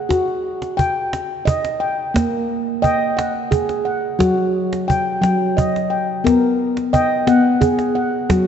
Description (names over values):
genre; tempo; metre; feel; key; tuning
world meditative, meditative tuned percussion; 58 BPM (dotted quarters); 6/8; straight; unclear; A4 = 441 Hz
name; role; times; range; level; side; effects
handpan; arpeggios; 0.0-8.5 s; F#3 to G5; -16 LUFS; left 1 dB; none
cajon; percussion; 0.1-8.5 s; none; -22 LUFS; right 2 dB; none
room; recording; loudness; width
wet church reverb, RT60 3.6 s; nothing above 7.9 kHz; -16 LUFS; side -8 dB against mid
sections
0.0-8.5 A section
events
none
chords
0.1 D#; 2.1 Gmmaj7/Bb; 4.2 D#m/F#; 6.2 B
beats
| 0.09 1.12 | 2.14 3.17 | 4.20 5.22 | 6.25 7.27 | 8.29